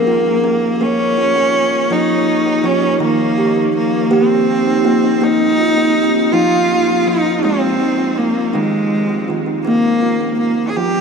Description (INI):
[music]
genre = world meditative, meditative tuned percussion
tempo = 54 BPM (dotted quarters)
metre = 6/8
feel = straight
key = Bb dorian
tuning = A4 = 442 Hz
[part]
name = clear cello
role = melody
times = 0.0-11.0 s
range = Ab3 to Ab4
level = -16 LUFS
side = equal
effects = none
[part]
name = kalimba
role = arpeggios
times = 0.0-11.0 s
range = Eb3 to G4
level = -16 LUFS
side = right 1 dB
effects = ping-pong delay
[sound]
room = wet huge ambient reverb, RT60 8.4 s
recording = dreamy mix soaked in reverb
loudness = -13 LUFS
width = side -5 dB against mid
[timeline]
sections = 0.8-11.0 A section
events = none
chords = 0.0 Bbm; 3.0 Eb; 5.2 Bbm; 7.4 Ab; 9.7 Bbm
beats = | 0.81 1.91 | 3.01 4.12 | 5.22 6.33 | 7.43 8.54 | 9.65 10.76